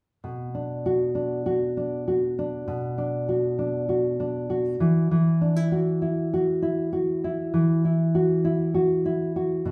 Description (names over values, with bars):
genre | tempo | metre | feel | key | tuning
pop | 99 BPM | 4/4 | straight | unclear | A4 = 440 Hz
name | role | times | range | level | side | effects
nylon-string guitar | accompaniment | 0.2-9.7 s | B2 to F#4 | -25 LUFS | equal | none
room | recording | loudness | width
wet large studio reverb, RT60 0.8 s | band playing live in one room | -25 LUFS | mono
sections
0.2-9.7 A section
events
none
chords
0.2 Bm; 4.8 Esus2